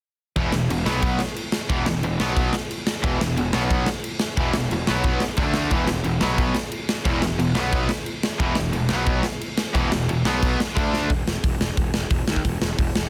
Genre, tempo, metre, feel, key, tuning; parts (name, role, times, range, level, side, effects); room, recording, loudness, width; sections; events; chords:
punk rock; 179 BPM; 4/4; straight; A4 = 440 Hz
biting overdriven guitar; riff; 0.4-11.1 s; E2 to D4; -29 LUFS; equal
distorted electric guitar; riff; 0.4-11.1 s; E2 to D4; -28 LUFS; equal; overdrive
fuzz picked electric bass; bass; 0.4-13.1 s; E1 to D#2; -29 LUFS; equal; overdrive
big rock drum kit; drums; 0.4-13.0 s; crash cymbal, hi-hat, kick drum, snare drum; -26 LUFS; equal
light reverb; dense, heavily limited modern master; -23 LUFS; mono
0.4-11.1 A section; 11.1-13.1 B section
drum fill 10.9
0.4 E5; 0.9 B5; 1.7 E5; 2.2 B5; 3.0 E5; 3.5 B5; 4.4 E5; 4.9 B5; 5.4 D5; 5.7 E5; 6.2 B5; 7.1 E5; 7.6 B5; 8.4 E5; 8.9 B5; 9.7 E5; 10.2 B5; 10.8 D5; 11.1 N.C.